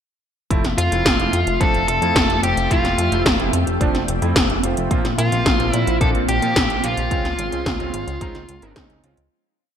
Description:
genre	synthwave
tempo	109 BPM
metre	4/4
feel	straight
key	F major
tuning	A4 = 440 Hz
part	analog string pad	sustained chords	0.5-9.3 s	Bb2 to E5	-26 LUFS	equal	ensemble chorus
part	warm electric grand piano	stabs	0.5-9.2 s	F3 to Bb4	-27 LUFS	right 3 dB	analog chorus
part	chorused synth bass	bass	0.5-9.3 s	F1 to Bb2	-23 LUFS	equal	tube saturation, sidechain pumping
part	80s electronic pad drums	drums	0.5-9.3 s	hi-hat, snare drum	-22 LUFS	equal	gated reverb
part	electronic kick drum	drums	0.5-8.9 s	none	-22 LUFS	equal	none
part	dark smooth lead guitar	melody	0.8-8.7 s	F4 to A4	-22 LUFS	left 1 dB	overdrive, digital delay
room	moderate plate reverb, RT60 2.1 s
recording	bright 1980s-style digital production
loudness	-16 LUFS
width	side -8 dB against mid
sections	0.5-9.3 verse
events	fade-out 6.4-9.3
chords	0.5 Fmaj7; 4.9 Bbsus2; 7.1 Dbmaj7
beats	| 0.50 1.05 1.60 2.16 | 2.71 3.26 3.81 4.36 | 4.91 5.46 6.01 6.56 | 7.11 7.66 8.21 8.76

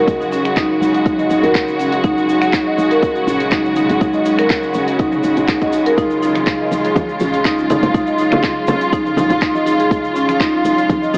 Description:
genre	afro house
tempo	122 BPM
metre	4/4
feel	straight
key	Eb minor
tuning	A4 = 441 Hz
part	warm studio string section	sustained chords	0.0-11.2 s	Db3 to Gb4	-18 LUFS	equal	sidechain pumping, cassette tape
part	marimba with medium mallets	arpeggios	0.0-11.2 s	Db4 to Eb5	-16 LUFS	equal	sidechain pumping, cassette tape, tape echo
part	woody FM bass	bass	0.0-11.2 s	Eb1 to Bb1	-22 LUFS	equal	sidechain pumping
part	deep house drum kit	drums	0.1-11.0 s	finger snaps, handclaps, hi-hat, toms	-24 LUFS	equal	studio reverb
part	electronic kick drum	drums	0.1-11.0 s	none	-19 LUFS	equal	studio reverb
part	egg shaker	percussion	0.1-11.2 s	none	-39 LUFS	equal	none
part	congas	percussion	6.3-11.2 s	none	-20 LUFS	equal	none
room	light reverb, small room ambience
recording	home recording on cassette, AM radio sound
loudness	-13 LUFS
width	side -38 dB against mid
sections	0.0-11.2 A section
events	none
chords	0.0 Ebm11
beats	| 0.08 0.57 1.06 1.55 | 2.04 2.54 3.03 3.52 | 4.01 4.50 4.99 5.49 | 5.98 6.47 6.96 7.45 | 7.95 8.44 8.93 9.42 | 9.91 10.40 10.90

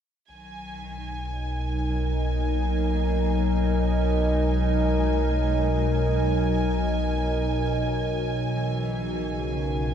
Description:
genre	ambient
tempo	free time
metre	none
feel	none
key	B major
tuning	A4 = 439 Hz
part	dark cello	melody	0.3-9.9 s	C#3 to B3	-41 LUFS	equal	none
part	evolving wavetable pad	sustained chords	0.8-9.9 s	B2 to D#5	-25 LUFS	equal	chorus, built-in reverb
part	warm sub bass	bass	0.3-9.9 s	B1	-27 LUFS	equal	tube saturation
part	warm chamber violin section	texture	0.3-9.9 s	G#5	-35 LUFS	equal	none
room	wet huge ambient reverb, RT60 7.9 s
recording	dark, warm production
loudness	-22 LUFS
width	side -8 dB against mid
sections	0.3-9.9 A section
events	none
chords	0.3 Bmaj7; 8.5 E6/B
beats	free time

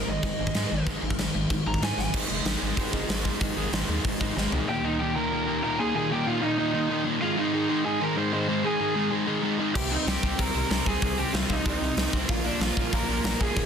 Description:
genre	punk rock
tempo	189 BPM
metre	4/4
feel	straight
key	unclear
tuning	A4 = 438 Hz
part	lead guitar through a small cranked amp	melody	0.0-2.1, 4.7-13.7 s	D4 to C6	-29 LUFS	right 2 dB	overdrive
part	overdriven electric guitar	riff	0.0-13.7 s	Eb2 to C4	-27 LUFS	left 1 dB	none
part	gritty driven synth bass	bass	0.0-4.6, 9.8-13.7 s	Eb1 to Ab2	-32 LUFS	equal	none
part	big rock drum kit	drums	0.2-4.6, 9.8-13.6 s	crash cymbal, hi-hat, kick drum, snare drum, toms	-28 LUFS	equal	soft clipping on kick
room	little or no reverb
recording	dense, heavily limited modern master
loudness	-24 LUFS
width	side -7 dB against mid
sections	0.0-2.1 A section; 2.1-4.7 B section; 4.7-13.7 C section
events	lead electric guitar solo 0.0-2.1; drum fill 2.0, 4.4-4.7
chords	0.0 Ab5; 4.7 Eb; 7.2 Ab; 9.8 Cm; 12.3 Bb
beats	0.23 0.55 | 0.87 1.19 1.51 1.82 | 2.14 2.46 2.78 3.10 | 3.41 3.73 4.05 4.36 | 4.68 5.00 5.32 5.63 | 5.95 6.27 6.58 6.90 | 7.22 7.53 7.85 8.17 | 8.48 8.80 9.12 9.44 | 9.75 10.07 10.39 10.71 | 11.02 11.34 11.66 11.98 | 12.30 12.61 12.93 13.25 | 13.57

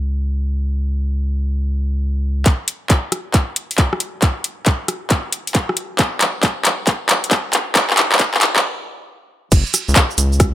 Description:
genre	UK garage, two-step garage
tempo	136 BPM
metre	4/4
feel	swing 67% on 16ths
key	unclear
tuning	A4 = 436 Hz
part	rubbery square bass	bass	0.0-2.4, 9.5-10.5 s	F#1 to C#2	-18 LUFS	equal	none
part	electronic kick drum	drums	2.5-10.5 s	none	-15 LUFS	equal	none
part	garage drum kit	drums	2.5-10.5 s	cabasa, crash cymbal, handclaps, hi-hat, rim click	-16 LUFS	left 1 dB	none
room	light reverb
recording	high-pass filter, low-pass filter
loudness	-15 LUFS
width	side -13 dB against mid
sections	0.0-2.5 A section; 2.5-9.5 B section; 9.5-10.5 C section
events	filter sweep 0.0-2.5; build-up 2.5-9.5; drum fill 2.5-8.6; stop 8.6-9.5; drop 9.5-10.5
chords	none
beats	0.25 | 0.69 1.14 1.58 2.02 | 2.46 2.90 3.34 3.78 | 4.22 4.67 5.11 5.55 | 5.99 6.43 6.87 7.31 | 7.75 8.20 8.64 9.08 | 9.52 9.96 10.40

